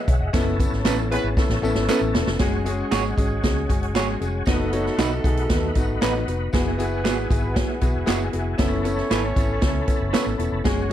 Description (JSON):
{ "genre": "uptempo 1960s-style soul", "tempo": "116 BPM", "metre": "4/4", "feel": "straight", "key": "unclear", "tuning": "A4 = 440 Hz", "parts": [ { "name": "warm concert grand piano", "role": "accompaniment", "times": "0.0-10.9 s", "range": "G#3 to F#5", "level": "-26 LUFS", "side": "left 4 dB", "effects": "none" }, { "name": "percussive tonewheel organ", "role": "sustained chords", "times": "0.0-10.9 s", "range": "G#4 to B5", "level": "-34 LUFS", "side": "equal", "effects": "chorus vibrato, fast rotary speaker" }, { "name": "vintage muted fingered electric bass", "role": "bass", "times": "0.1-10.9 s", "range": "E1 to D#2", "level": "-26 LUFS", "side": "equal", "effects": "none" }, { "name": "swinging big-band drum kit", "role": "drums", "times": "0.1-10.9 s", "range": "hi-hat, kick drum, snare drum", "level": "-23 LUFS", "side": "right 1 dB", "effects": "none" }, { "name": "tambourine and handclaps", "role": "percussion", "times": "0.1-10.8 s", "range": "none", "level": "-36 LUFS", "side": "left 2 dB", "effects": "none" }, { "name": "electric guitar through a small old amp", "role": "stabs", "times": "0.9-10.2 s", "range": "B3 to C#5", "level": "-26 LUFS", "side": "right 9 dB", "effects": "none" }, { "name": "mellow horn section", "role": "second line", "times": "1.1-10.9 s", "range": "G#3 to C#5", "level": "-30 LUFS", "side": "right 2 dB", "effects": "none" } ], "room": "light reverb", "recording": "dark, warm production", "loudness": "-20 LUFS", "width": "side -11 dB against mid", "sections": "0.0-2.4 A section; 2.4-10.9 B section", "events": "band accent 0.3-2.4; drum fill 1.4-2.4", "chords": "0.3 Aadd9/F#; 2.4 F#sus2; 4.5 B/F#; 6.5 Eadd9/F#; 8.6 Aadd9/F#" }